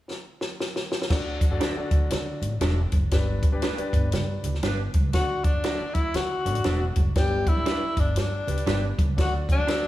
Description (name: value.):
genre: uptempo 1960s-style soul.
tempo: 119 BPM.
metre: 4/4.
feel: swing 61% on 8ths.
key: D major.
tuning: A4 = 440 Hz.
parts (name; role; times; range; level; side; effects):
compact cocktail drum kit; drums; 0.1-9.8 s; crash cymbal, hi-hat, kick drum, snare drum; -25 LUFS; equal; none.
warm grand piano; accompaniment; 1.1-9.9 s; G2 to D5; -33 LUFS; left 2 dB; none.
upright bass; bass; 1.1-9.9 s; E1 to D3; -28 LUFS; equal; none.
congas; percussion; 1.1-9.8 s; none; -37 LUFS; right 3 dB; none.
electric guitar through a small old amp; stabs; 1.6-9.8 s; D4 to D5; -32 LUFS; right 3 dB; none.
breathy tenor saxophone; melody; 5.1-9.9 s; D4 to G4; -28 LUFS; left 2 dB; none.
room: light reverb.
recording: small room reverb.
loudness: -22 LUFS.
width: side -15 dB against mid.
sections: 0.0-1.1 A section; 1.1-5.1 B section; 5.1-9.9 C section.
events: drum fill 0.1-1.1.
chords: 0.0 N.C.; 1.1 D; 3.1 G; 5.1 D; 7.2 G; 9.2 D.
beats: 0.09 0.59 | 1.10 1.60 2.11 2.61 | 3.12 3.62 4.13 4.63 | 5.14 5.64 6.15 6.65 | 7.16 7.66 8.17 8.68 | 9.18 9.69.